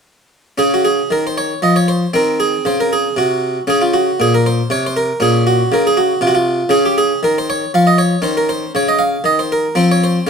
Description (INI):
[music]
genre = classical, baroque-style suite movement for harpsichord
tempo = 117 BPM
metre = 3/4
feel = rubato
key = unclear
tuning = A4 = 441 Hz
[part]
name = harpsichord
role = solo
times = 0.6-10.3 s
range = Bb2 to F5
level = -12 LUFS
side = equal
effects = none
[sound]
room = moderate stone room reverb, RT60 1.0 s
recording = close, detailed microphones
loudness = -13 LUFS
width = side -6 dB against mid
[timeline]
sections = 0.6-10.3 A section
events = none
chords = 0.6 Db; 2.1 Cm7b5; 3.7 Bbm9; 6.7 Dbadd9; 8.2 Dbmaj13; 9.8 F5